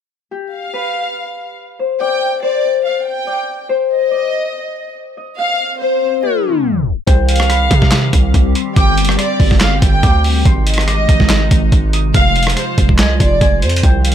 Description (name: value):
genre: hip hop, trap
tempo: 142 BPM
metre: 4/4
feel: half-time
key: C harmonic minor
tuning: A4 = 442 Hz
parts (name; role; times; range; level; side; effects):
- Celtic harp; melody; 0.3-14.1 s; G4 to F6; -20 LUFS; left 6 dB; none
- dark studio violin section; second line; 0.5-14.1 s; C5 to G5; -20 LUFS; right 1 dB; ping-pong delay
- swell; sound effects; 5.8-7.1 s; none; -22 LUFS; left 4 dB; none
- hollow soft pad; sustained chords; 7.1-14.1 s; C3 to G4; -21 LUFS; left 1 dB; ensemble chorus
- distorted 808-style bass; bass; 7.1-14.1 s; F1 to C3; -14 LUFS; right 1 dB; distortion
- lo-fi sampler-style drum kit; drums; 7.1-14.1 s; handclaps, hi-hat, kick drum, rim click, snare drum; -13 LUFS; right 1 dB; overdrive
room: little or no reverb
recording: tape stop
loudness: -12 LUFS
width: side -9 dB against mid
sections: 0.3-7.1 A section; 7.1-14.1 B section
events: swell 5.8-7.1; tape stop 6.2-7.1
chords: 0.3 N.C.; 7.1 Cm; 8.8 Gsus4; 10.5 Ab; 12.1 Fm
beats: | 0.31 0.74 1.16 1.58 | 2.00 2.43 2.85 3.27 | 3.69 4.12 4.54 4.96 | 5.38 5.81 6.23 6.65 | 7.07 7.50 7.92 8.34 | 8.77 9.19 9.61 10.03 | 10.46 10.88 11.30 11.72 | 12.14 12.57 12.99 13.41 | 13.84